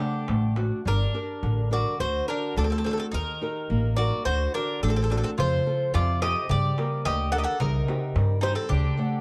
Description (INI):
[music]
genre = greek folk, Greek bouzouki band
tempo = 107 BPM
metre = 2/4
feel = straight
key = G harmonic minor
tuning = A4 = 439 Hz
[part]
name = Greek bouzouki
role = melody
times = 0.0-9.2 s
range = G4 to F#5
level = -31 LUFS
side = equal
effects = none
[part]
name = mandolin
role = second line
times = 0.0-9.2 s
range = C4 to A4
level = -38 LUFS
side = equal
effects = none
[part]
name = nylon-string guitar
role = accompaniment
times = 0.0-9.2 s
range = C3 to F#5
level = -34 LUFS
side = equal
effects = none
[part]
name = darbuka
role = percussion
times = 0.1-0.7, 5.4-8.9 s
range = none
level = -31 LUFS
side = equal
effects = none
[part]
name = upright bass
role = bass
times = 0.3-8.9 s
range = G1 to G2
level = -28 LUFS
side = equal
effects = none
[sound]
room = little or no reverb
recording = dark, warm production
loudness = -26 LUFS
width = mono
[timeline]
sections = 0.9-9.2 A section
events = speeding up 0.0-9.2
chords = 0.0 D; 0.9 Gm; 2.0 D; 3.1 Eb; 4.3 D; 5.4 F; 6.5 Gm; 7.6 Cm; 8.7 D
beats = 0.28 | 0.85 1.42 | 1.99 2.56 | 3.13 3.69 | 4.26 4.82 | 5.38 5.94 | 6.49 7.04 | 7.60 8.15 | 8.70